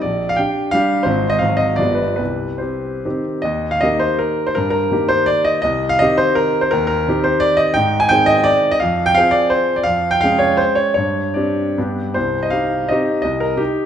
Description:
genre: classical, romantic triple-time dance for piano with dotted rhythms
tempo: 136-184 BPM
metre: 3/4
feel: rubato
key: C minor, Eb major from 3.5 s, C minor from 7.8 s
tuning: A4 = 440 Hz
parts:
  - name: warm grand piano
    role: solo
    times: 0.0-13.9 s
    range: G1 to Ab5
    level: -15 LUFS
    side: equal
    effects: none
room: wet recital hall reverb, RT60 1.5 s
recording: none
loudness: -14 LUFS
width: side -9 dB against mid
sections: 0.0-3.5 A section; 3.5-12.2 B section; 12.2-13.9 A section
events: none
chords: 0.0 Gm/Bb; 1.1 Fm/Ab; 1.4 Ab7; 1.8 G7; 2.2 Cm; 3.5 Eb; 4.6 Eb/G; 5.6 Cm; 6.7 Cm/Eb; 7.8 Ab; 8.8 Fm; 9.9 Db/F; 11.0 Gsus4; 11.8 G; 12.2 Cm; 13.2 Eb/C

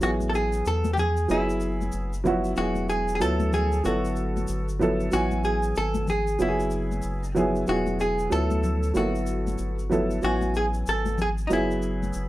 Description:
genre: hip hop, jazz-hop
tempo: 94 BPM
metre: 4/4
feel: swing 62% on 16ths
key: unclear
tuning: A4 = 440 Hz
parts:
  - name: hollow-body jazz guitar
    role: melody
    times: 0.0-12.3 s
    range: D#4 to A4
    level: -28 LUFS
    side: equal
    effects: none
  - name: dark upright piano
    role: accompaniment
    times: 0.0-12.3 s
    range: F#3 to G#5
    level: -26 LUFS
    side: right 1 dB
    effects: none
  - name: round analog bass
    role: bass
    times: 0.0-12.3 s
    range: E1 to E2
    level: -28 LUFS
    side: equal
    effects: none
  - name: tube shaker and congas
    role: percussion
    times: 0.0-12.3 s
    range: none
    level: -34 LUFS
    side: left 3 dB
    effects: none
room: wet studio reverb, RT60 0.6 s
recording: dark, warm production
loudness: -23 LUFS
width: side -16 dB against mid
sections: 0.0-12.3 A section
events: none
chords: 0.0 A5; 1.3 F#sus2; 2.6 Eadd9; 3.2 D69; 3.9 Gmaj9; 5.1 A5; 6.4 F#sus2; 7.7 Eadd9; 8.3 D69; 9.0 Gmaj9; 10.2 A5; 11.5 F#sus2

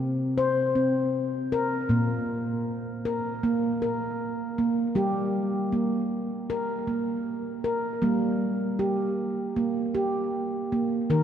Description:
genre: world meditative, meditative tuned percussion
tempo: 78 BPM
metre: 4/4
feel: swing 55% on 16ths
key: G minor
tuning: A4 = 439 Hz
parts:
  - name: handpan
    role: solo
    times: 0.0-11.2 s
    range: Bb2 to C5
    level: -25 LUFS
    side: equal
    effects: analog delay
room: wet cathedral reverb, RT60 5.9 s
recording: dreamy mix soaked in reverb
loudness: -25 LUFS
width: side -9 dB against mid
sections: 0.0-8.0 A section; 8.0-11.2 B section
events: none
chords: 0.0 C5; 1.9 N.C.; 5.0 Gm

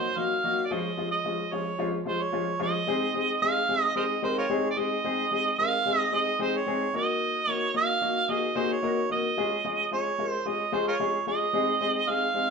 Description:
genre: soul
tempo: 111 BPM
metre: 4/4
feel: straight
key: Ab mixolydian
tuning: A4 = 440 Hz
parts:
  - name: mellow harmonica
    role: melody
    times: 0.0-12.5 s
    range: F4 to F5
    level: -27 LUFS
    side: right 4 dB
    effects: none
  - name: warm baby grand piano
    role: accompaniment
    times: 0.0-12.5 s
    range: F3 to Bb4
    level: -28 LUFS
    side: left 4 dB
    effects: none
room: wet studio reverb, RT60 0.8 s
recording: band playing live in one room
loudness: -24 LUFS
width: side -5 dB against mid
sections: 0.0-2.9 A section; 2.9-12.5 B section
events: none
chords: 0.0 Ebm; 0.7 Db; 2.9 Ab; 6.9 Ebm; 9.4 Db; 11.5 Ab

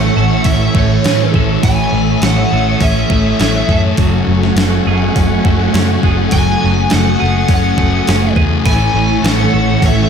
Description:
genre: rock, shoegaze and dream pop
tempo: 102 BPM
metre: 4/4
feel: straight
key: A lydian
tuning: A4 = 438 Hz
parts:
  - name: lead guitar through a small cranked amp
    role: melody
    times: 0.0-10.1 s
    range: C#5 to G#5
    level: -19 LUFS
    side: equal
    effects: overdrive, analog chorus, ping-pong delay
  - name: soft string machine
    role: sustained chords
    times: 0.0-10.1 s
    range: A3 to D#6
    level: -20 LUFS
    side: right 1 dB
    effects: ensemble chorus
  - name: twelve-string electric guitar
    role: arpeggios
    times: 0.0-10.1 s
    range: E3 to A4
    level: -22 LUFS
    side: right 8 dB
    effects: lush chorus, ping-pong delay
  - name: overdriven semi-hollow guitar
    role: riff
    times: 0.0-10.1 s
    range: A2 to F#4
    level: -20 LUFS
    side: right 10 dB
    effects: reverse reverb
  - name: thick fuzz guitar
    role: riff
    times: 0.0-10.1 s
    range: F#2 to A3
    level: -17 LUFS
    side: left 12 dB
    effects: distortion, wide subtle chorus
  - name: vintage muted picked electric bass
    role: bass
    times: 0.0-10.0 s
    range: F#1 to A2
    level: -16 LUFS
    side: equal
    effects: none
  - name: crisp 8-bit digital drum machine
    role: drums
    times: 0.4-10.0 s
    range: hi-hat, kick drum, snare drum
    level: -16 LUFS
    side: equal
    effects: overdrive
room: moderate plate reverb, RT60 1.9 s, digital ambience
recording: dreamy mix soaked in reverb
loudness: -10 LUFS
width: side -7 dB against mid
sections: 0.0-10.1 A section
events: none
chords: 0.0 A; 4.0 F#madd9; 8.7 A

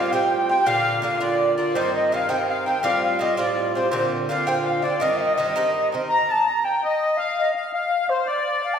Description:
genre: celtic folk, Celtic jig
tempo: 111 BPM (dotted quarters)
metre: 6/8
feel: straight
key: C dorian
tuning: A4 = 440 Hz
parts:
  - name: mellow wooden flute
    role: melody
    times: 0.0-8.8 s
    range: C5 to Bb5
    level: -22 LUFS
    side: equal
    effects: none
  - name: accordion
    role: second line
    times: 0.0-8.8 s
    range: C5 to Bb5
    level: -26 LUFS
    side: left 2 dB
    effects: light tremolo tuning
  - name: Irish bouzouki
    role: accompaniment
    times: 0.0-6.1 s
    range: G2 to F4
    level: -24 LUFS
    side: right 2 dB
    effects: none
room: wet concert hall reverb, RT60 2.0 s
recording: recorded in a church or concert hall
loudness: -19 LUFS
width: side -7 dB against mid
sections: 0.0-6.1 A section; 6.1-8.8 B section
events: none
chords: 0.0 Fadd9; 0.7 Bb; 1.8 Cm; 2.8 Fadd9; 3.9 Bbadd9; 5.0 Cm; 6.1 N.C.

